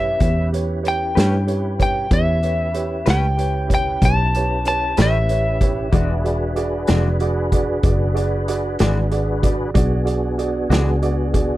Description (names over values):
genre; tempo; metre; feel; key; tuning
slow blues; 63 BPM (dotted quarters); 12/8; straight; E mixolydian; A4 = 440 Hz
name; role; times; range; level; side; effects
lightly driven lead guitar; melody; 0.0-6.9 s; E5 to A5; -22 LUFS; left 1 dB; none
clear upright piano; accompaniment; 0.0-11.6 s; F#4 to D5; -25 LUFS; right 6 dB; none
tonewheel organ; sustained chords; 0.0-11.6 s; B3 to B4; -27 LUFS; left 1 dB; slow rotary speaker, chorus vibrato
fingered electric bass; bass; 0.0-11.6 s; E1 to G2; -20 LUFS; equal; none
vintage drum kit; drums; 0.2-11.5 s; hi-hat, kick drum, snare drum; -21 LUFS; equal; none
semi-hollow electric guitar; accompaniment; 1.2-10.9 s; E3 to B4; -24 LUFS; left 6 dB; harmonic tremolo
room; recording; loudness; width
little or no reverb; none; -16 LUFS; side -16 dB against mid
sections
0.0-11.6 A section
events
none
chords
0.0 A9; 5.9 E9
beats
0.21 1.16 | 2.12 3.07 4.03 4.98 | 5.93 6.89 7.84 8.80 | 9.75 10.71